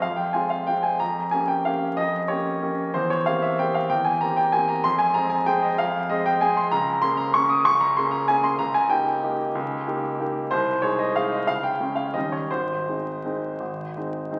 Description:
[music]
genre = classical, piano waltz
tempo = 160-202 BPM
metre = 3/4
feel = rubato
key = F minor, Ab major from 6.7 s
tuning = A4 = 440 Hz
[part]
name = bright grand piano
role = solo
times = 0.0-14.4 s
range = Ab1 to Eb6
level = -23 LUFS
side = equal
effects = none
[sound]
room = wet recital hall reverb, RT60 1.4 s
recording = very old 78 rpm record, vinyl crackle, nothing above 10.3 kHz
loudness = -23 LUFS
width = mono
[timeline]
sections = 0.0-14.4 A section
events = none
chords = 0.0 Fm; 1.0 Gm7b5/F; 2.9 C7/E; 4.8 Fm; 6.7 Bbm7/Db; 8.6 Eb7/Db; 10.5 Ab/C; 11.5 Db5; 12.2 Eb7; 12.5 Ab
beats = | 0.03 0.34 0.67 | 0.99 1.31 1.65 | 1.97 2.29 2.61 | 2.93 3.25 3.58 | 3.90 4.22 4.54 | 4.84 5.16 5.47 | 5.79 6.10 6.42 | 6.72 7.02 7.34 | 7.65 7.96 8.28 | 8.59 8.90 9.23 | 9.55 9.87 10.19 | 10.51 10.83 11.16 | 11.48 11.80 12.15 | 12.51 12.87 13.24 | 13.60 13.96 14.32

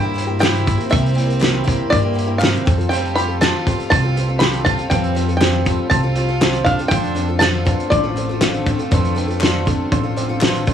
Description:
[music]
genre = indie folk with a building arrangement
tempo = 120 BPM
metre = 4/4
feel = straight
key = unclear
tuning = A4 = 444 Hz
[part]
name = bluegrass banjo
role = melody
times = 0.0-10.4 s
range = D5 to B5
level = -20 LUFS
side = equal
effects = cassette tape
[part]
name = warm fiddle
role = second line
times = 0.0-10.4 s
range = A3 to G4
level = -27 LUFS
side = right 6 dB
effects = cassette tape, analog delay
[part]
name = picked twelve-string acoustic guitar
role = accompaniment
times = 0.0-10.7 s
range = C3 to A4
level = -24 LUFS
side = left 5 dB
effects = cassette tape
[part]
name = hand-pumped harmonium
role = sustained chords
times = 0.0-10.7 s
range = D4 to G5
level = -30 LUFS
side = equal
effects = none
[part]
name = upright bass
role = bass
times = 0.0-10.7 s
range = A1 to G2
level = -21 LUFS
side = equal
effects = none
[part]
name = loose indie drum kit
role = drums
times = 0.2-10.7 s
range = hi-hat, kick drum, snare drum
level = -19 LUFS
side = equal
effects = none
[part]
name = group handclap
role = percussion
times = 0.4-10.5 s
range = none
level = -28 LUFS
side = left 7 dB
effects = none
[part]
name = warm upright piano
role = accompaniment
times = 2.9-10.7 s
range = F1 to D5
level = -27 LUFS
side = right 6 dB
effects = cassette tape
[sound]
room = light reverb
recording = home recording on cassette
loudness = -15 LUFS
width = side -9 dB against mid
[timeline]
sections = 0.0-10.7 A section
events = none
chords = 0.0 C7; 2.7 Fadd9; 6.9 Dm7/F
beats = 0.42 | 0.92 1.42 1.92 2.42 | 2.91 3.41 3.91 4.41 | 4.91 5.41 5.91 6.41 | 6.91 7.41 7.92 8.41 | 8.92 9.42 9.92 10.42

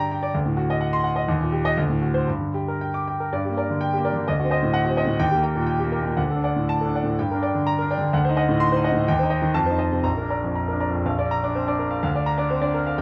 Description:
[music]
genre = classical, virtuoso piano study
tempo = 112-130 BPM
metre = 2/4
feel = rubato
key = G minor, Bb major from 9.1 s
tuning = A4 = 440 Hz
[part]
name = clear concert grand piano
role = solo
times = 0.0-13.0 s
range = G1 to D6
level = -23 LUFS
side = equal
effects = none
[sound]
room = moderate studio reverb, RT60 0.7 s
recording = worn, warbling old tape, cassette tape, warbly pitch drift, nothing above 8.0 kHz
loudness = -23 LUFS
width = mono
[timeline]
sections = 0.0-3.3 A section; 3.3-11.1 A section; 11.1-13.0 B section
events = none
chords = 0.3 D7b9; 1.3 Eb; 1.8 D7; 2.3 Gm; 4.3 D7b9; 5.2 Eb; 6.2 D; 7.2 Gm; 8.1 D7b9; 9.1 Cm/Eb; 9.5 F7; 10.0 Bb; 12.0 Bb/D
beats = | 0.34 0.80 | 1.28 1.76 | 2.27 2.80 | 3.31 3.80 | 4.27 4.74 | 5.21 5.69 | 6.18 6.69 | 7.18 7.67 | 8.15 8.62 | 9.08 9.54 | 10.05 10.56 | 11.07 11.56 | 12.04 12.51 | 12.98

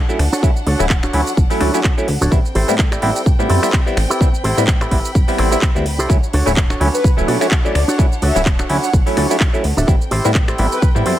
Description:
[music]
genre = filtered disco house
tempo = 127 BPM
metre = 4/4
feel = swing 56% on 16ths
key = D major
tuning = A4 = 438 Hz
[part]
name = warm studio violin section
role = sustained chords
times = 0.0-11.2 s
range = C4 to C#6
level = -27 LUFS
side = equal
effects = sidechain pumping
[part]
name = electric guitar with an envelope filter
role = riff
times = 0.0-11.2 s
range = D4 to E5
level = -22 LUFS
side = right 1 dB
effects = vintage 12-bit sampler grit, sidechain pumping
[part]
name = clav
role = accompaniment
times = 0.1-11.2 s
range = F#3 to E4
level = -20 LUFS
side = equal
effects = phaser, sidechain pumping
[part]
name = house drum kit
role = drums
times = 0.1-11.2 s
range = finger snaps, handclaps, hi-hat, shaker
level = -24 LUFS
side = right 2 dB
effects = sidechain pumping on perc, sidechain pumping on hats
[part]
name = plucky analog bass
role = bass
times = 0.2-11.2 s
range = D1 to B2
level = -18 LUFS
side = equal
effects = sidechain pumping
[part]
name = electronic kick drum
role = drums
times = 0.4-10.9 s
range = none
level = -15 LUFS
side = equal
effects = none
[part]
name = analog synth brass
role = melody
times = 6.9-10.9 s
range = B4 to F#5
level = -23 LUFS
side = left 1 dB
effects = chorus, sidechain pumping
[sound]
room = light reverb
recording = none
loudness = -13 LUFS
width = side -13 dB against mid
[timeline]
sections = 0.0-11.2 A section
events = none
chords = 0.0 Dmaj7; 2.3 Am7; 6.1 Dmaj7; 9.9 Am7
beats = | 0.43 0.90 1.37 1.85 | 2.32 2.79 3.26 3.74 | 4.21 4.68 5.15 5.63 | 6.10 6.57 7.04 7.52 | 7.99 8.46 8.93 9.41 | 9.88 10.35 10.82

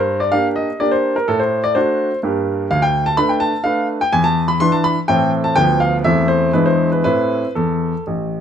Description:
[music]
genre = classical-period piano sonatina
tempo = 125 BPM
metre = 3/4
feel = rubato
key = A minor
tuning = A4 = 443 Hz
[part]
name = clear baby grand piano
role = solo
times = 0.0-8.4 s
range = A1 to C6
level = -14 LUFS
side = equal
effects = none
[sound]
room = light reverb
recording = close, detailed microphones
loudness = -14 LUFS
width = side -8 dB against mid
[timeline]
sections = 0.0-8.4 A section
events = none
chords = 0.0 Gm; 1.3 D7/A; 2.2 Gm; 2.7 Dm6; 4.1 E5; 5.1 Am; 5.6 Bdim/D; 6.0 Am/E; 6.5 E7; 7.0 Am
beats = 0.33 0.80 | 1.28 1.76 2.23 | 2.71 3.18 3.65 | 4.13 4.61 5.08 | 5.56 6.05 6.54 | 7.04 7.56 8.06

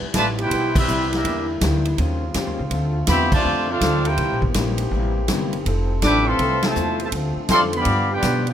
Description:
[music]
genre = jazz, big band swing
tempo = 163 BPM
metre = 4/4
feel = swing 66% on 8ths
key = C major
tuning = A4 = 440 Hz
[part]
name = picked steel-string acoustic guitar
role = accompaniment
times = 0.0-8.5 s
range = G2 to C5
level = -30 LUFS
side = left 5 dB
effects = none
[part]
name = warm trombone section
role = sustained chords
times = 0.0-8.5 s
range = C3 to A4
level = -28 LUFS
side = left 1 dB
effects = none
[part]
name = upright bass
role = bass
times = 0.0-8.5 s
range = F1 to B2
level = -23 LUFS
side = equal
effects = none
[part]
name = warm trombone section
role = second line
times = 0.1-8.5 s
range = B2 to G4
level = -26 LUFS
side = right 1 dB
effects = none
[part]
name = swinging big-band drum kit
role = drums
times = 0.1-8.5 s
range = crash cymbal, hi-hat, kick drum, ride cymbal, snare drum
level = -25 LUFS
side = equal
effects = none
[part]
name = clear trumpet section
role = melody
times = 0.2-8.5 s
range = C4 to D6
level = -21 LUFS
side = equal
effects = none
[sound]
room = light reverb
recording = minimal, uncompressed stereo recording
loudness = -18 LUFS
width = side -10 dB against mid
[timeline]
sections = 0.0-8.5 A section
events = band accent 0.7, 3.3, 6.6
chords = 0.0 Cmaj7; 1.2 Em7b5; 2.0 Eb13; 2.7 Dm7; 4.2 C7; 5.7 Fmaj7; 7.1 Dm7; 7.9 G7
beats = 0.14 0.51 0.88 | 1.25 1.61 1.98 2.35 | 2.71 3.08 3.45 3.82 | 4.19 4.55 4.92 5.29 | 5.66 6.03 6.39 6.76 | 7.13 7.50 7.86 8.23

